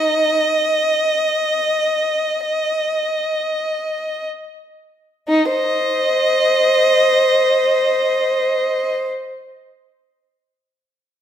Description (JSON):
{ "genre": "classical, free, expressive piece for unaccompanied violin", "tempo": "free time", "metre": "none", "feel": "none", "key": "unclear", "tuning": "A4 = 440 Hz", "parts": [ { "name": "rich violin", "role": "solo", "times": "0.0-9.1 s", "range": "Eb4 to Eb5", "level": "-16 LUFS", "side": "equal", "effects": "none" } ], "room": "wet recital hall reverb, RT60 1.5 s", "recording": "none", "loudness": "-15 LUFS", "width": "side -9 dB against mid", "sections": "0.0-5.3 A section; 5.3-11.2 B section", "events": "slowing down 0.0-5.3", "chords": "none" }